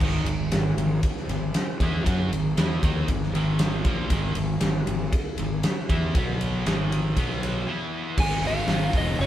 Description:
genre	classic rock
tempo	118 BPM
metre	4/4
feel	straight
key	G# minor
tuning	A4 = 436 Hz
part	distorted electric guitar	riff	0.0-9.3 s	F#2 to F#4	-28 LUFS	equal	distortion
part	fuzz fingered electric bass	bass	0.0-9.3 s	E#1 to F#2	-27 LUFS	equal	overdrive
part	big rock drum kit	drums	0.0-9.3 s	crash cymbal, hi-hat, kick drum, ride cymbal, snare drum	-26 LUFS	equal	none
part	lightly driven lead guitar	melody	8.2-9.3 s	C#5 to G#5	-27 LUFS	left 1 dB	none
room	moderate stone room reverb, RT60 1.1 s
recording	band playing live in one room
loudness	-22 LUFS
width	side -12 dB against mid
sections	0.0-8.2 A section; 8.2-9.3 B section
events	break 7.7-8.2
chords	0.0 G#5; 6.1 B5; 6.7 G#5; 7.2 B5; 7.7 E5; 8.2 G#m

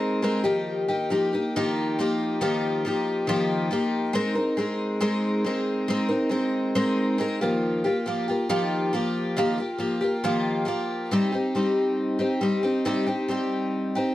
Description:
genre	rock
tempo	138 BPM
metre	4/4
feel	straight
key	unclear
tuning	A4 = 440 Hz
part	picked twelve-string acoustic guitar	solo	0.0-14.1 s	C3 to Bb4	-23 LUFS	left 1 dB	none
room	moderate studio reverb, RT60 0.8 s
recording	dark, warm production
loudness	-23 LUFS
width	side -14 dB against mid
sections	0.0-11.1 A section; 11.1-14.1 B section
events	none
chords	0.5 Ebadd9; 4.1 Abadd9; 7.4 Ebadd9; 11.1 Cm

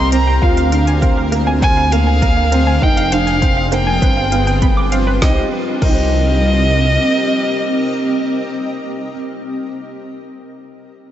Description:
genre	piano and strings electronica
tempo	100 BPM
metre	4/4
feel	straight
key	C minor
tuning	A4 = 442 Hz
part	rich violin	melody	0.0-8.4 s	Eb5 to C6	-20 LUFS	equal	tape echo
part	granular cloud pad	sustained chords	0.0-8.4 s	C4 to Eb5	-21 LUFS	equal	built-in reverb, sidechain pumping
part	warbly dusty pluck	arpeggios	0.0-6.0 s	Bb4 to D6	-25 LUFS	right 2 dB	chorus, sidechain pumping, tape echo
part	dark upright piano	riff	0.0-9.1 s	Bb3 to C5	-21 LUFS	right 2 dB	wide subtle chorus, tape echo
part	dark detuned saw bass	bass	0.0-7.0 s	F1 to D2	-16 LUFS	equal	sidechain pumping
part	deep house drum kit	drums	0.1-6.0 s	crash cymbal, hi-hat, snare drum	-26 LUFS	left 1 dB	none
part	electronic kick drum	drums	0.4-6.0 s	none	-16 LUFS	equal	none
room	wet cathedral reverb, RT60 5.7 s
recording	dreamy mix soaked in reverb, nothing above 7.9 kHz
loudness	-12 LUFS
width	side -11 dB against mid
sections	0.0-5.2 A section; 5.2-7.6 B section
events	drop 0.0-5.2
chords	0.4 Bb7/D; 2.8 Fm7; 4.0 G7; 5.2 Cm7

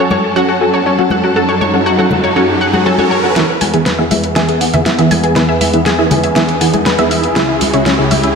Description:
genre	progressive house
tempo	120 BPM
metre	4/4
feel	straight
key	E major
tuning	A4 = 440 Hz
part	warm studio string section	sustained chords	0.0-8.4 s	C#2 to A4	-17 LUFS	right 1 dB	low-pass filter
part	analog pluck	arpeggios	0.0-8.3 s	C#4 to G#5	-17 LUFS	equal	chorus, ping-pong delay
part	wide unison pluck	stabs	0.0-8.1 s	C#3 to G#5	-15 LUFS	equal	lush chorus, ping-pong delay
part	riser	sound effects	0.4-8.4 s	none	-22 LUFS	right 2 dB	none
part	congas and woodblock	percussion	0.1-8.2 s	none	-20 LUFS	left 4 dB	none
part	pop drum kit	drums	3.4-8.3 s	hi-hat, snare drum	-17 LUFS	equal	small room reverb
room	wet lush hall reverb, RT60 2.0 s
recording	dreamy mix soaked in reverb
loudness	-10 LUFS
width	side -5 dB against mid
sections	0.0-3.4 A section; 3.4-8.4 B section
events	riser 0.4-3.4, 3.4-8.4; build-up 3.4-8.4; drum fill 3.4-8.4; filter sweep on string section 3.4-8.4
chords	0.0 F#m; 3.4 E; 7.4 C#m

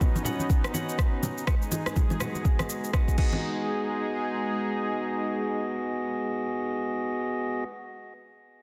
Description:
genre	afro house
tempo	123 BPM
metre	4/4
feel	swing 60% on 16ths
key	G# minor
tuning	A4 = 441 Hz
part	warm analog pad	sustained chords	0.0-7.6 s	G#3 to G#4	-35 LUFS	equal	chorus, tremolo, vintage 12-bit sampler grit, sidechain pumping
part	percussive tonewheel organ	stabs	0.0-7.6 s	B3 to F#5	-34 LUFS	equal	overdrive, stopped rotary speaker, sidechain pumping, low-pass filter, delay
part	afro-pop drum kit	drums	0.0-3.3 s	crash cymbal, rim click, shaker	-37 LUFS	equal	none
part	electronic kick drum	drums	0.0-3.3 s	none	-26 LUFS	equal	none
part	congas	percussion	0.0-3.4 s	none	-36 LUFS	equal	none
room	moderate recital hall reverb, RT60 1.6 s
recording	dense, heavily limited modern master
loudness	-28 LUFS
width	mono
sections	0.0-3.4 A section; 3.4-7.3 B section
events	none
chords	0.0 Badd9; 1.5 G#m7

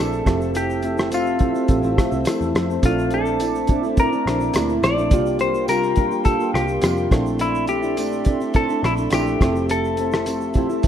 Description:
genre	indie pop, bedroom pop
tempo	105 BPM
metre	4/4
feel	straight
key	Bb lydian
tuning	A4 = 443 Hz
part	semi-hollow electric guitar	melody	0.0-10.9 s	E4 to D5	-23 LUFS	left 2 dB	wide subtle chorus, analog delay
part	fingerpicked plugged-in steel-string acoustic guitar	accompaniment	0.0-10.9 s	Bb2 to F4	-25 LUFS	left 2 dB	wide subtle chorus, warbly pitch drift
part	soft electric-piano-like synth keys	accompaniment	0.0-10.9 s	Bb3 to A5	-25 LUFS	right 5 dB	chorus, cassette tape
part	hollow soft pad	sustained chords	0.0-10.9 s	A4 to E6	-30 LUFS	left 1 dB	chorus
part	vintage muted picked electric bass	bass	0.0-10.8 s	F1 to F2	-27 LUFS	equal	none
part	cloth-damped thuddy drum kit	drums	0.1-10.9 s	hi-hat, kick drum, rim click, shaker	-21 LUFS	equal	none
part	tambourine	percussion	1.1-10.4 s	none	-39 LUFS	right 5 dB	none
room	moderate digital room reverb, RT60 1.1 s, small room ambience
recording	rough home demo mix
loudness	-18 LUFS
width	side -9 dB against mid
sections	0.0-10.9 A section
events	none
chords	0.3 Fmaj7; 2.8 Bbmaj9#11; 5.1 C7sus4; 7.1 Bbmaj9#11; 9.4 Fmaj7

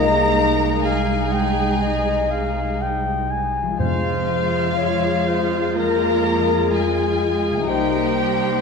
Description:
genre	cinematic, emotional film score for orchestra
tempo	61 BPM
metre	4/4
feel	rubato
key	F minor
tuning	A4 = 435 Hz
part	rich studio violin section	melody	0.0-8.6 s	F5 to Bb5	-26 LUFS	left 2 dB	none
part	mellow clarinet	second line	0.0-8.6 s	Ab4 to Ab5	-24 LUFS	left 1 dB	none
part	rich studio violin section	second line	0.0-8.6 s	F4 to Bb4	-27 LUFS	left 7 dB	none
part	rich studio viola section	accompaniment	0.0-8.6 s	Ab3 to F4	-27 LUFS	right 1 dB	none
part	mellow French horn section	sustained chords	0.0-8.6 s	Ab3 to F4	-26 LUFS	left 3 dB	none
part	concert harp	arpeggios	0.0-8.6 s	C3 to Ab4	-27 LUFS	left 6 dB	none
part	rich studio cello section	bass	0.0-8.6 s	F3 to Bb3	-29 LUFS	right 3 dB	none
part	warm studio double bass section	bass	0.0-8.6 s	C2 to F2	-26 LUFS	right 5 dB	none
part	timpani	percussion	3.8-5.2 s	F2	-27 LUFS	equal	none
room	moderate scoring stage reverb, RT60 2.0 s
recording	minimal, uncompressed stereo recording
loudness	-17 LUFS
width	side -5 dB against mid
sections	0.0-8.6 A section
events	none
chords	0.0 Abmaj7/C; 3.8 Fm; 7.7 Cm7

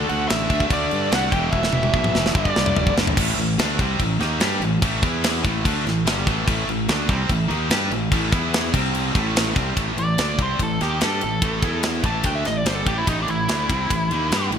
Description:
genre	hard rock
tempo	146 BPM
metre	4/4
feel	straight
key	A minor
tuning	A4 = 440 Hz
part	nasal lead guitar with a parked wah	melody	0.0-2.9, 10.0-14.5 s	D4 to A5	-24 LUFS	equal	overdrive
part	high-gain distorted guitar	riff	0.0-14.6 s	E2 to G4	-24 LUFS	right 1 dB	distortion
part	fuzz fingered electric bass	bass	0.0-14.6 s	E1 to G2	-26 LUFS	equal	overdrive
part	tight metal drum kit	drums	0.1-14.6 s	crash cymbal, kick drum, ride cymbal, snare drum, toms	-23 LUFS	equal	none
room	light reverb, small room ambience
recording	bright 1980s-style digital production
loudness	-18 LUFS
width	side -8 dB against mid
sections	0.0-3.2 A section; 3.2-9.8 B section; 9.8-14.6 C section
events	drum fill 1.5-3.2; lead electric guitar solo 9.8-14.6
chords	0.0 D5; 1.3 E5; 2.4 G5; 3.2 Am; 5.0 E5; 5.4 Am; 8.3 E5; 8.7 C5; 9.2 Am; 11.6 E5; 12.0 Am

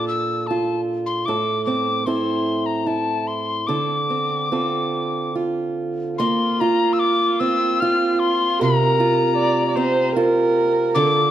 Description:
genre	celtic folk, Celtic slow air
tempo	69-79 BPM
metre	3/4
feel	rubato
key	unclear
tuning	A4 = 437 Hz
part	mellow tin whistle	melody	0.0-11.3 s	A5 to F6	-22 LUFS	left 4 dB	none
part	fingerpicked acoustic archtop guitar	accompaniment	0.0-11.3 s	A2 to A4	-21 LUFS	right 2 dB	none
part	dark viola	second line	6.2-11.3 s	F4 to D5	-21 LUFS	right 2 dB	none
room	moderate recital hall reverb, RT60 1.4 s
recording	dark, warm production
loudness	-18 LUFS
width	side -11 dB against mid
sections	0.0-6.2 A section; 6.2-11.3 B section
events	none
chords	0.0 Bbmaj7; 1.3 Am; 3.7 Dm7; 6.2 Bbsus2; 8.6 C7sus4

